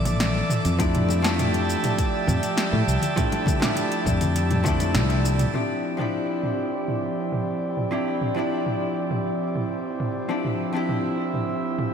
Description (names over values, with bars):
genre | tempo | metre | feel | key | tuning
sunset chillout | 101 BPM | 4/4 | straight | D minor | A4 = 439 Hz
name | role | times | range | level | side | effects
vintage hollow-body jazz guitar | accompaniment | 0.0-11.9 s | E3 to A4 | -28 LUFS | moving between left 5 dB and right 5 dB | auto-pan, ping-pong delay
airy breathy pad | sustained chords | 0.0-11.9 s | F3 to D6 | -27 LUFS | right 1 dB | chorus, vintage 12-bit sampler grit
fretless electric bass | bass | 0.0-5.5 s | Bb1 to A2 | -23 LUFS | equal | analog chorus
deep house drum kit | drums | 0.1-11.9 s | hi-hat, shaker, snare drum, toms | -28 LUFS | right 1 dB | overdrive, low-pass filter on hats, small room reverb, low-pass filter on toms, low-pass filter on perc, low-pass filter on snare, gated reverb
congas | percussion | 0.1-5.4 s | none | -32 LUFS | left 4 dB | none
electronic kick drum | drums | 0.8-4.8 s | none | -26 LUFS | equal | overdrive, small room reverb
room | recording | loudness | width
moderate lush hall reverb, RT60 2.6 s | bright 1980s-style digital production | -21 LUFS | side -7 dB against mid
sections
0.0-5.5 A section; 5.5-11.9 B section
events
filter sweep on drum 5.5-11.9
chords
0.0 Bbmaj9#11; 0.8 Fmaj13; 5.5 Dm11